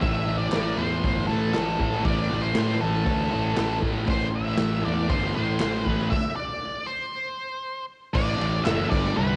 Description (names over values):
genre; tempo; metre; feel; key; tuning
garage rock duo or trio; 118 BPM; 4/4; straight; A minor; A4 = 441 Hz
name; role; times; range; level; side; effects
octave-fuzz lead guitar; melody; 0.0-9.4 s; A4 to E5; -32 LUFS; equal; distortion, cassette tape
thick fuzz guitar; riff; 0.0-9.4 s; G2 to A3; -30 LUFS; equal; distortion, cassette tape
fuzz fingered electric bass; bass; 0.0-9.3 s; F#1 to A2; -31 LUFS; equal; overdrive
raw garage drum kit; drums; 0.0-9.1 s; crash cymbal, hi-hat, kick drum, ride cymbal, snare drum; -30 LUFS; equal; cassette tape
group handclap; percussion; 0.5-8.8 s; none; -42 LUFS; equal; none
room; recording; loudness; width
light reverb, small room ambience; home recording on cassette, nothing above 10.5 kHz; -25 LUFS; mono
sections
0.0-8.1 A section; 8.1-9.4 B section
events
stop 6.1-8.1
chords
0.0 Am; 8.1 A5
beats
| 0.01 0.52 1.03 1.54 | 2.05 2.55 3.06 3.57 | 4.08 4.59 5.10 5.61 | 6.12 6.62 7.13 7.64 | 8.15 8.65 9.16